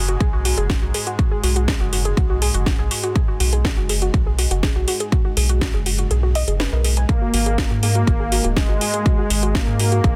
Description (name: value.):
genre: melodic techno.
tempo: 122 BPM.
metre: 4/4.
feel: straight.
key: unclear.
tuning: A4 = 440 Hz.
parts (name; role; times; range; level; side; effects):
warbly dusty pluck; arpeggios; 0.0-10.1 s; F#4 to G#5; -29 LUFS; equal; chorus, sidechain pumping, digital delay.
round analog bass; bass; 0.0-10.2 s; D#1 to G#2; -22 LUFS; equal; sidechain pumping.
analog drone; drone; 0.0-10.2 s; G#2 to G#3; -34 LUFS; equal; chorus, sidechain pumping.
house drum kit; drums; 0.1-10.1 s; hi-hat, snare drum; -27 LUFS; equal; none.
electronic kick drum; drums; 0.2-10.1 s; none; -22 LUFS; equal; none.
unison lead; melody; 7.1-10.2 s; G#3 to A#3; -25 LUFS; equal; sidechain pumping, digital delay.
room: digital ambience.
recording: dense, heavily limited modern master.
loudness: -19 LUFS.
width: mono.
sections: 0.0-10.2 A section.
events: kick drops out 6.1-7.1.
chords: 0.0 B5; 7.1 G#sus2.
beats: 0.20 0.70 | 1.19 1.68 2.17 2.66 | 3.16 3.65 4.14 4.63 | 5.12 5.62 6.11 6.60 | 7.09 7.58 8.07 8.57 | 9.06 9.55 10.04.